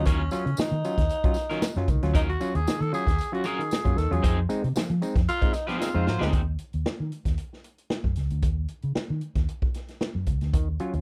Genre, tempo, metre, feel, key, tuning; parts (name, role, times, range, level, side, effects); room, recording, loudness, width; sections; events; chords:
funk; 114 BPM; 4/4; straight; Eb dorian; A4 = 440 Hz
growling tenor saxophone; melody; 0.0-6.3 s; Db4 to A4; -32 LUFS; equal
auto-wah clav; stabs; 0.0-6.3, 10.5-11.0 s; Eb3 to F4; -33 LUFS; equal
vintage muted fingered electric bass; bass; 0.0-11.0 s; Db2 to F3; -29 LUFS; equal
electric guitar at the edge of break-up; accompaniment; 0.1-6.4 s; Gb3 to C5; -34 LUFS; equal
swinging big-band drum kit; drums; 0.1-11.0 s; hi-hat, kick drum, snare drum; -29 LUFS; equal
tambourine; percussion; 0.1-5.9 s; -46 LUFS; equal
clear horn section; second line; 5.9-6.4 s; Gb3 to C5; -35 LUFS; equal
little or no reverb; -26 LUFS; mono
0.0-6.3 A section; 6.3-11.0 B section
tenor saxophone solo 0.0-6.3; band accent 4.2-6.3; drum fill 5.8-6.3
0.0 Ebm9; 4.2 Fm7; 6.3 Eb7(no3)